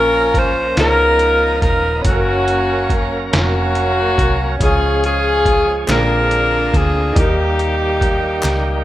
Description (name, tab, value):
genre	slow gospel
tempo	47 BPM (dotted quarters)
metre	6/8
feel	straight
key	unclear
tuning	A4 = 440 Hz
part	bright saxophone section	melody	0.0-8.8 s	Bb3 to C5	-16 LUFS	equal	slapback echo
part	bright grand piano	accompaniment	0.0-8.8 s	Bb2 to Db5	-26 LUFS	left 1 dB	none
part	bright tonewheel organ	sustained chords	0.0-8.8 s	C3 to Bb4	-24 LUFS	right 2 dB	slow rotary speaker, overdrive
part	hollow-body short-scale fingered electric bass	bass	0.0-8.8 s	Eb1 to Eb2	-20 LUFS	equal	none
part	trip hop sampler-style drum kit	drums	0.3-8.6 s	hi-hat, kick drum, snare drum	-19 LUFS	equal	none
part	group handclap	percussion	5.9-8.8 s	none	-26 LUFS	left 1 dB	none
room	light reverb, small room ambience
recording	rough home demo mix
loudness	-13 LUFS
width	side -14 dB against mid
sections	0.0-8.8 A section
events	drum fill 8.4-8.8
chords	0.0 Bbm; 0.8 Db13; 2.0 Gb; 4.6 Db; 5.9 Bb9; 7.2 Eb